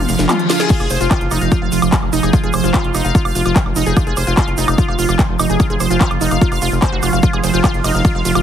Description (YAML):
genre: psychedelic trance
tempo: 147 BPM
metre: 4/4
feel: straight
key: F phrygian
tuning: A4 = 441 Hz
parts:
  - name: evolving wavetable pad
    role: sustained chords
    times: 0.0-8.4 s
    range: F3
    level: -21 LUFS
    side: right 6 dB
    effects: chorus, built-in reverb, sidechain pumping
  - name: wide unison pluck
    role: riff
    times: 0.0-8.4 s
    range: Eb4 to F5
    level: -19 LUFS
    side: equal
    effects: auto-pan, vintage 12-bit sampler grit, sidechain pumping, dub echo
  - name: round analog bass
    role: bass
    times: 0.0-8.4 s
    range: F1 to Gb1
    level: -19 LUFS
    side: left 1 dB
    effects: none
  - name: reverse cymbal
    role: sound effects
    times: 0.1-0.7 s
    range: none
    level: -27 LUFS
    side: left 7 dB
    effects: none
  - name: techno drum kit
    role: drums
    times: 0.1-8.4 s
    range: crash cymbal, handclaps, hi-hat, ride cymbal, snare drum, toms, woodblock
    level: -21 LUFS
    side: equal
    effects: overdrive
  - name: tube shaker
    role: percussion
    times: 0.1-8.4 s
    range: none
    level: -29 LUFS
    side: right 4 dB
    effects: none
  - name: electronic kick drum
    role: drums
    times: 0.7-8.1 s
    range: none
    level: -15 LUFS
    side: equal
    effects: overdrive
room: light reverb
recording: heavily compressed radio sound, multiband compression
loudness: -13 LUFS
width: side -9 dB against mid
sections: 0.0-8.4 A section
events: drum fill 0.0-0.7; reverse cymbal 0.1-0.7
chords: 0.0 F5